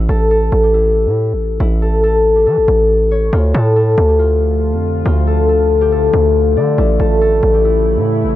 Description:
hip hop, drill; 139 BPM; 4/4; half-time; D harmonic minor; A4 = 441 Hz
concert harp; melody; 0.0-8.4 s; E4 to D5; -14 LUFS; left 2 dB; low-pass filter, ping-pong delay
distorted 808-style bass; bass; 0.0-8.4 s; A1 to E3; -15 LUFS; equal; distortion
deep dark ambient pad; sustained chords; 4.3-8.4 s; C#3 to F4; -21 LUFS; right 1 dB; chorus, built-in reverb
small room reverb; -11 LUFS; side -14 dB against mid
0.0-8.4 A section
0.0 A5; 3.3 Dm; 6.8 A

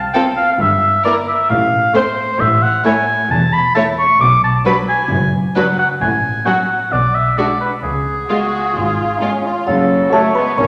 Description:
cinematic, playful, whimsical film cue; 133 BPM; 4/4; straight; F# minor; A4 = 440 Hz
rich studio cello section; bass; 0.0-10.7 s; E2 to C#4; -26 LUFS; equal
rich studio double bass section; bass; 0.0-10.7 s; E1 to F#2; -24 LUFS; equal
rich studio violin section; melody; 0.1-10.5 s; E#4 to C#5; -26 LUFS; equal
warm oboe; second line; 0.1-10.7 s; G#4 to D6; -18 LUFS; equal
warm studio violin section; second line; 0.1-10.5 s; C4 to A4; -26 LUFS; equal
rich studio viola section; accompaniment; 0.1-10.5 s; F#3 to F#4; -24 LUFS; equal
music box; melody; 9.7-10.7 s; F#5 to C#6; -22 LUFS; equal
dark bassoon; accompaniment; 9.7-10.7 s; F#3 to C#4; -19 LUFS; equal
warm French horn section; sustained chords; 9.7-10.7 s; C#3 to A#3; -22 LUFS; equal
mellow tuba; bass; 9.7-10.7 s; F#1 to Ab1; -26 LUFS; equal
bright concert flute; second line; 10.1-10.2 s; C#5; -25 LUFS; equal
warm clarinet; second line; 10.1-10.3 s; A4; -29 LUFS; equal
wet recital hall reverb, RT60 1.7 s; -15 LUFS; mono
0.0-9.7 A section
0.0 F5; 0.6 Em/G; 1.5 F/A; 2.4 A; 4.2 Bm; 6.0 F#m/A; 6.9 G#dim/B (rootless); 7.8 C#; 9.7 F#m

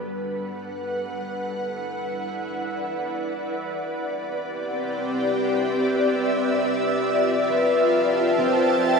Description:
ambient; 67 BPM; 3/4; straight; A4 = 436 Hz
ethereal airy pad; sustained chords; 0.0-9.0 s; G3 to A5; -22 LUFS; equal; ensemble chorus, built-in reverb
concert harp; arpeggios; 0.0-9.0 s; B3 to F#5; -27 LUFS; left 2 dB; tape echo
wet cathedral reverb, RT60 4.9 s; -22 LUFS; side -5 dB against mid
0.0-9.0 A section
fade-in on ambient pad 0.0-9.0; fade-in on harp 0.0-9.0
0.0 Gmaj7; 1.2 E5; 3.9 Cmaj7; 6.6 Fmaj7

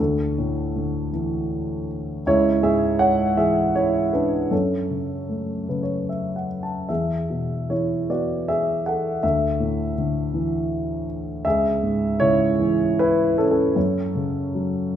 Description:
classical, lyrical solo piano; 73-82 BPM; 3/4; rubato; F# minor; A4 = 440 Hz
dark grand piano; solo; 0.0-15.0 s; C#2 to A5; -20 LUFS; equal
moderate scoring stage reverb, RT60 1.7 s; minimal, uncompressed stereo recording; -20 LUFS; side -10 dB against mid
0.0-15.0 A section
grand piano fill 5.3-6.9
0.0 Dsus2; 2.3 C#m; 4.5 F#m; 6.9 E; 9.2 Dsus2; 11.5 C#m; 13.8 F#m

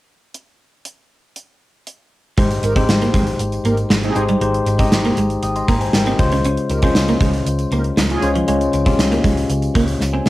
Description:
1980s-style pop; 118 BPM; 4/4; straight; Ab major; A4 = 438 Hz
gated 80s drum kit; drums; 0.3-10.3 s; hi-hat, kick drum, snare drum; -18 LUFS; equal; cassette tape
tine electric piano; accompaniment; 2.4-10.3 s; Ab2 to Eb6; -19 LUFS; left 2 dB; cassette tape, plate reverb
clean electric guitar; riff; 2.4-10.3 s; F3 to Db4; -23 LUFS; right 2 dB; ensemble chorus, cassette tape
vintage muted picked electric bass; bass; 2.4-10.3 s; Ab1 to Db2; -22 LUFS; equal
tambourine; percussion; 2.5-10.3 s; -40 LUFS; right 4 dB
mellow synth brass; stabs; 2.6-8.3 s; C4 to C5; -25 LUFS; right 1 dB; chorus, cassette tape, plate reverb
wet small room reverb, RT60 0.5 s; home recording on cassette; -14 LUFS; side -17 dB against mid
0.3-2.4 A section; 2.4-10.3 B section
drum fill 10.0
0.3 N.C.; 2.4 Abmaj7; 6.2 Dbmaj7

